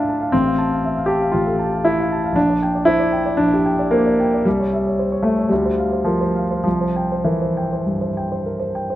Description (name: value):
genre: classical, romantic character piece for solo piano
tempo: 97-119 BPM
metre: 4/4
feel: rubato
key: F major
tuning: A4 = 440 Hz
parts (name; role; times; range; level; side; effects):
- warm grand piano; solo; 0.0-9.0 s; A1 to A5; -16 LUFS; equal; none
room: moderate recital hall reverb, RT60 1.6 s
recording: none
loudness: -16 LUFS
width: side -14 dB against mid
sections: 0.0-9.0 A section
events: none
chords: 0.3 F/A; 2.4 Gm/Bb; 4.5 C; 5.5 Dm7; 6.7 C